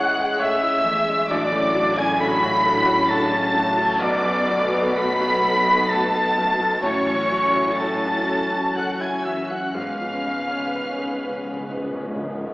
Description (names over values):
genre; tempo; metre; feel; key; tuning
cinematic; 60-67 BPM; 3/4; rubato; F# minor; A4 = 443 Hz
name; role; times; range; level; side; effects
clear symphonic violin section; melody; 0.0-11.7 s; C#6 to B6; -28 LUFS; equal; none
mellow hollow silver concert flute; second line; 0.0-11.7 s; C#5 to B5; -24 LUFS; equal; none
rich symphonic violin section; second line; 0.0-11.7 s; C#5 to B5; -29 LUFS; equal; none
warm oboe; second line; 0.0-11.7 s; C#5 to B5; -25 LUFS; equal; none
clear baby grand piano; accompaniment; 0.0-12.5 s; A1 to C#5; -28 LUFS; equal; none
rich studio viola section; accompaniment; 0.0-12.5 s; E3 to B4; -29 LUFS; equal; none
mellow French horn section; sustained chords; 0.0-12.4 s; C#3 to C#4; -29 LUFS; left 1 dB; none
clear symphonic cello section; bass; 1.3-12.4 s; F#2 to B2; -29 LUFS; equal; none
rich symphonic double bass section; bass; 1.3-12.4 s; F#1 to B1; -35 LUFS; equal; none
timpani; percussion; 9.8-12.5 s; C#3; -32 LUFS; equal; none
room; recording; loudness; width
wet scoring stage reverb, RT60 1.6 s; heard from further back in the room, AM radio sound; -18 LUFS; side -20 dB against mid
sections
0.0-12.5 A section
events
timpani fill 9.8-12.5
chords
0.0 Amaj7; 1.3 Dmaj7/A; 4.0 Bm7; 6.8 F#m7/A; 9.8 C#7/G#